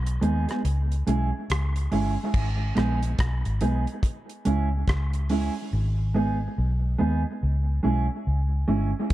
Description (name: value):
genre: dub reggae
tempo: 71 BPM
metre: 4/4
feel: swing 62% on 16ths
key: unclear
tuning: A4 = 442 Hz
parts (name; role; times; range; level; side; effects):
- vintage muted fingered electric bass; bass; 0.0-9.1 s; G1 to D#2; -24 LUFS; equal; none
- damped 70s drum kit; drums; 0.1-9.1 s; crash cymbal, hi-hat, kick drum, rim click; -29 LUFS; equal; none
- mellow electric guitar; accompaniment; 0.2-8.9 s; G#3 to G#4; -28 LUFS; right 2 dB; harmonic tremolo, tape echo
room: light reverb, small room ambience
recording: dark, warm production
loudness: -23 LUFS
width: side -15 dB against mid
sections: 0.0-2.3 A section; 2.3-9.1 B section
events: break 0.0-2.3; part muted 5.7-9.1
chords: 0.0 G#m; 0.6 C#m; 2.3 G#m; 4.0 C#m; 5.7 G#m; 7.4 C#m